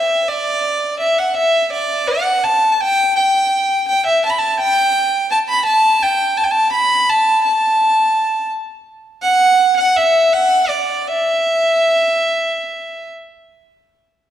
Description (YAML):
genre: andean folk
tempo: 84 BPM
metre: 3/4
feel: straight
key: E minor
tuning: A4 = 440 Hz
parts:
  - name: rich violin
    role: solo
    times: 0.0-13.1 s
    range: D5 to B5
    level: -13 LUFS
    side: equal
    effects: none
room: moderate scoring stage reverb, RT60 1.6 s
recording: dark, warm production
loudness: -13 LUFS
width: side -11 dB against mid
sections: 0.0-13.9 A section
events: slowing down 9.2-13.9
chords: none